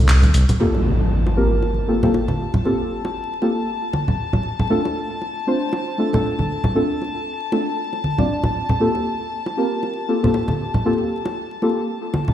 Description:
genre	deep house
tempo	117 BPM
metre	4/4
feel	swing 58% on 16ths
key	G minor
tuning	A4 = 440 Hz
part	deep house drum kit	drums	0.1-0.6 s	handclaps, hi-hat	-24 LUFS	equal	overdrive
part	congas and bongos	percussion	0.2-12.3 s	none	-22 LUFS	equal	none
part	deep mellow chord stab	stabs	0.6-11.9 s	A3 to D5	-21 LUFS	equal	chorus, tape echo
part	impact	sound effects	0.6-2.6 s	none	-21 LUFS	equal	none
part	rich chamber violin section	texture	0.6-12.3 s	A5	-28 LUFS	left 3 dB	none
room	moderate lush hall reverb, RT60 2.0 s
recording	played on a big sound system in a bare room, stone room reverb, vinyl crackle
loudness	-18 LUFS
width	side -11 dB against mid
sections	0.6-12.3 A section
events	impact 0.6-2.6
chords	0.0 D7(no3); 0.6 Gm11; 4.4 Dm7; 8.8 Gm11

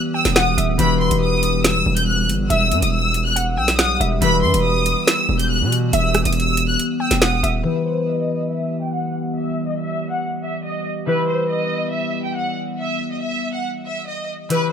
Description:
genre	hip hop, drill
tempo	140 BPM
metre	4/4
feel	half-time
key	E harmonic minor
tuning	A4 = 435 Hz
part	concert harp	accompaniment	0.0-14.7 s	E3 to B4	-24 LUFS	left 4 dB	low-pass filter
part	warbly tape-like pad	sustained chords	0.0-14.5 s	E3 to G4	-26 LUFS	right 1 dB	chorus, built-in reverb, low-pass filter
part	clear studio violin section	melody	0.1-14.7 s	B4 to G6	-22 LUFS	equal	low-pass filter
part	warbly dusty pluck	second line	0.1-7.6 s	E5 to G5	-25 LUFS	left 1 dB	chorus, phaser, ping-pong delay
part	distorted 808-style bass	bass	0.3-7.6 s	D#1 to B2	-20 LUFS	right 1 dB	distortion
part	drill drum kit	drums	0.3-7.5, 14.5-14.6 s	hi-hat, rim click, snare drum	-20 LUFS	right 1 dB	none
room	digital ambience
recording	rough home demo mix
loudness	-17 LUFS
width	side -8 dB against mid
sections	0.0-7.6 A section; 7.6-14.5 B section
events	filter sweep 7.6-14.5; kick muted 14.5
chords	0.0 Em

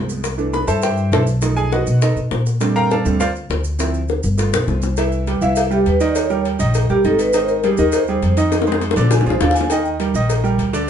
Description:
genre	Afro-Cuban jazz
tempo	203 BPM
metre	4/4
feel	straight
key	unclear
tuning	A4 = 441 Hz
part	bright upright piano	accompaniment	0.0-10.9 s	D3 to B5	-20 LUFS	right 3 dB	none
part	upright bass	bass	0.0-10.9 s	G1 to B2	-19 LUFS	equal	none
part	bongos and cowbell	percussion	0.1-10.9 s	none	-23 LUFS	left 4 dB	none
part	maracas	percussion	0.1-10.9 s	none	-34 LUFS	right 4 dB	none
part	vibraphone with medium mallets	melody	5.4-9.8 s	G4 to Ab5	-18 LUFS	equal	plate reverb
room	wet studio reverb, RT60 0.6 s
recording	heard from further back in the room, nothing above 10.9 kHz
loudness	-15 LUFS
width	side -8 dB against mid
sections	0.0-5.0 A section; 5.0-10.9 A section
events	upright piano solo 0.0-5.0; drum fill 4.5-5.0, 8.5-9.7; vibraphone solo 5.0-10.9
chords	0.2 C6; 1.4 B7#11; 2.6 Bbmaj13; 3.8 Dm7; 4.4 G9; 5.0 Cmaj7; 6.2 Eb7; 7.3 Abmaj7; 8.5 Bb9; 9.7 Ebmaj7

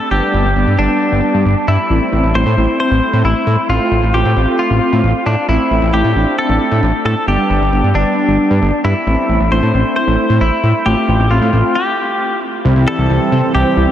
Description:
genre	synth-pop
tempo	134 BPM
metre	4/4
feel	straight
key	A minor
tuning	A4 = 440 Hz
part	direct-recorded clean electric guitar	melody	0.0-13.9 s	D4 to C5	-17 LUFS	left 1 dB	analog chorus, analog delay
part	mellow synth brass	accompaniment	0.1-13.9 s	G3 to F4	-17 LUFS	equal	chorus
part	fat analog bass	bass	0.1-13.9 s	G1 to C3	-14 LUFS	equal	none
part	chorused pulse-width pad	sustained chords	12.6-13.9 s	E3 to C4	-17 LUFS	right 3 dB	none
room	wet huge ambient reverb, RT60 7.3 s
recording	dreamy mix soaked in reverb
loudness	-11 LUFS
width	side -10 dB against mid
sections	0.0-12.6 A section; 12.6-13.9 B section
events	stop 11.8-12.6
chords	0.1 G; 1.9 Am; 3.7 F/A; 5.5 Am; 7.3 G; 9.1 Am; 10.9 F/A; 11.8 N.C.; 12.6 C

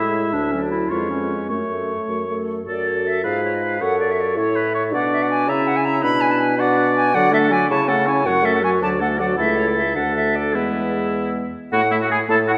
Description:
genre	quick classical-period movement for wind quintet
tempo	100-109 BPM (dotted quarters)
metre	6/8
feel	rubato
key	F# minor, A major from 7.2 s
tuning	A4 = 440 Hz
part	silver concert flute	melody	0.0-12.6 s	A4 to B5	-26 LUFS	equal	none
part	warm oboe	second line	0.0-12.5 s	E4 to E5	-25 LUFS	equal	none
part	mellow French horn	accompaniment	0.0-12.6 s	F#3 to A4	-27 LUFS	equal	none
part	warm clarinet	accompaniment	0.0-12.6 s	A3 to A4	-29 LUFS	equal	none
part	dark bassoon	bass	0.0-12.6 s	C#2 to D3	-26 LUFS	equal	none
room	wet concert hall reverb, RT60 1.8 s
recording	none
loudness	-20 LUFS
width	mono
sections	0.0-2.7 A section; 2.7-11.7 A section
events	none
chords	0.3 D; 0.9 C#7/E#; 1.5 F#m; 3.3 Fdim/Ab; 3.8 F#m; 4.9 Bm; 5.5 C#m6; 6.0 Bm; 7.2 D; 7.7 A/C#; 8.3 F#m; 8.8 D; 9.4 A/C#; 10.0 D5; 10.5 E; 11.7 A5

